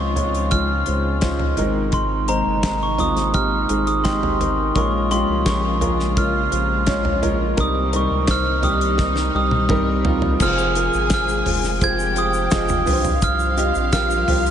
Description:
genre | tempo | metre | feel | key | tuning
piano-driven pop | 85 BPM | 4/4 | straight | F minor | A4 = 440 Hz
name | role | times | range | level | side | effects
glockenspiel with soft plastic mallets | melody | 0.0-14.5 s | Bb5 to Ab6 | -22 LUFS | right 2 dB | none
warm upright piano | accompaniment | 0.0-14.5 s | G2 to Eb5 | -23 LUFS | right 1 dB | analog chorus
warm studio string section | sustained chords | 0.0-14.5 s | C3 to F4 | -29 LUFS | left 2 dB | none
round analog bass | bass | 0.0-14.5 s | F1 to Db2 | -24 LUFS | equal | none
damped 70s drum kit | drums | 0.2-14.5 s | crash cymbal, handclaps, hi-hat, kick drum, snare drum, toms | -23 LUFS | equal | none
dark studio violin section | second line | 10.4-14.5 s | F4 to Ab5 | -27 LUFS | left 3 dB | none
tube shaker | percussion | 10.4-14.5 s | none | -37 LUFS | left 10 dB | none
room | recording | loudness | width
moderate lush hall reverb, RT60 2.7 s | dreamy mix soaked in reverb, nothing above 11.0 kHz | -17 LUFS | side -9 dB against mid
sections
0.0-10.4 A section; 10.4-14.5 B section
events
drum fill 9.0-10.4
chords
0.0 Dbmaj7; 1.6 Abadd9; 4.8 Bbm7; 7.6 Cm7; 10.4 Fm; 12.9 Csus4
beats
0.52 1.23 | 1.93 2.64 3.34 4.05 | 4.76 5.46 6.17 6.87 | 7.58 8.29 8.99 9.70 | 10.40 11.11 11.81 12.52 | 13.22 13.93

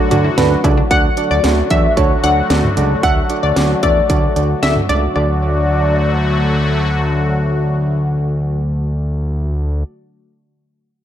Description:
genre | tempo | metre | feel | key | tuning
synth-pop | 113 BPM | 4/4 | straight | D major | A4 = 440 Hz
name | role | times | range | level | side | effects
sweeping resonant pad | sustained chords | 0.0-9.8 s | D3 to F#4 | -21 LUFS | left 2 dB | chorus
wide unison pluck | arpeggios | 0.0-0.9 s | D4 to F#4 | -26 LUFS | left 4 dB | tape echo
soft electric-piano-like synth keys | accompaniment | 0.1-9.9 s | D4 to E5 | -20 LUFS | right 6 dB | chorus
fat analog bass | bass | 0.1-9.8 s | C#2 to E2 | -17 LUFS | equal | none
house drum kit | drums | 0.1-5.0 s | cowbell, hi-hat, kick drum, snare drum, toms | -18 LUFS | equal | overdrive
funky polysynth comp | second line | 0.9-6.7 s | D5 to F#5 | -19 LUFS | left 3 dB | chorus, tape echo
room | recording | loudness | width
moderate recital hall reverb, RT60 1.5 s | dark, warm production | -13 LUFS | side -10 dB against mid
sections
0.9-5.2 A section; 5.2-9.4 B section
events
none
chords
0.0 D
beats
0.38 | 0.91 1.44 1.97 2.50 | 3.03 3.56 4.09 4.63 | 5.16 5.69 6.22 6.75 | 7.28 7.81 8.34 8.87

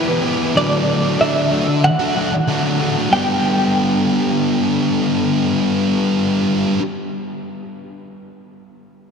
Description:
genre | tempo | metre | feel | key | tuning
post-rock | 94 BPM | 4/4 | straight | G major | A4 = 438 Hz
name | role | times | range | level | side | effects
twelve-string electric guitar | melody | 0.0-6.8 s | B4 to G5 | -20 LUFS | equal | tremolo, ping-pong delay
thick fuzz guitar | riff | 0.0-6.8 s | D3 to G4 | -17 LUFS | equal | distortion
room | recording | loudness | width
wet cathedral reverb, RT60 5.6 s | dreamy mix soaked in reverb | -15 LUFS | side -6 dB against mid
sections
0.0-3.1 A section; 3.1-5.7 B section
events
none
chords
0.0 Em; 0.6 D; 3.1 G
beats
| 0.57 1.21 1.84 2.48 | 3.12 3.75 4.39 5.03

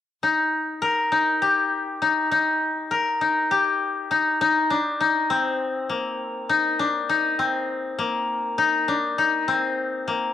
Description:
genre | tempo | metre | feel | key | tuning
progressive instrumental, progressive | 201 BPM (eighths) | 7/8 | straight | C minor | A4 = 441 Hz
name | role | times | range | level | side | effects
koto | solo | 0.2-10.3 s | Bb3 to Bb4 | -20 LUFS | left 3 dB | none
room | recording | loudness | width
wet spring reverb, RT60 2.4 s | home recording on cassette | -20 LUFS | side -11 dB against mid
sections
0.2-4.4 A section; 4.4-10.3 B section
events
none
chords
0.2 Eb; 4.4 Cm7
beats
| 0.23 0.53 0.82 1.12 1.42 1.72 2.02 | 2.32 2.62 2.91 3.21 3.51 3.81 4.11 | 4.41 4.71 5.00 5.30 5.60 5.90 6.20 | 6.50 6.79 7.09 7.39 7.69 7.99 8.28 | 8.58 8.88 9.18 9.48 9.78 10.07

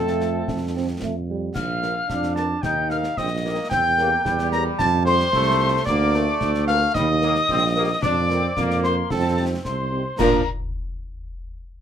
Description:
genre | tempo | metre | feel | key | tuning
military-style march for wind band | 111 BPM | 2/4 | straight | Bb major | A4 = 442 Hz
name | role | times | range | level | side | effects
warm cornet | melody | 0.0-10.4 s | A4 to Bb5 | -25 LUFS | right 1 dB | none
dark euphonium | second line | 0.0-1.5 s | G3 to C4 | -28 LUFS | right 4 dB | none
mellow piccolo | second line | 0.0-10.5 s | A5 to Bb6 | -25 LUFS | left 4 dB | none
dark French horn section | accompaniment | 0.0-10.4 s | Bb3 to Bb4 | -28 LUFS | left 3 dB | none
bright trombone section | sustained chords | 0.0-10.4 s | F3 to Eb4 | -28 LUFS | right 1 dB | none
mellow tuba | bass | 0.0-10.4 s | Bb1 to Bb2 | -24 LUFS | right 3 dB | none
concert snare drum, concert bass drum and clash cymbals | drums | 0.1-10.5 s | none | -32 LUFS | left 1 dB | none
room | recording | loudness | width
moderate studio ambience, RT60 0.5 s | minimal, uncompressed stereo recording | -19 LUFS | side -9 dB against mid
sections
0.0-10.2 A section; 10.2-11.3 B section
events
none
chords
0.0 F; 1.6 Bb; 2.6 Eb; 3.7 Edim7; 4.8 F; 5.9 Bb/D; 7.0 Eb; 8.0 Bb/F; 9.1 Fsus2; 10.2 Bb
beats
| 0.48 1.02 | 1.55 2.09 | 2.63 3.17 | 3.71 4.25 | 4.79 5.33 | 5.87 6.41 | 6.95 7.49 | 8.03 8.57 | 9.11 9.65 | 10.19

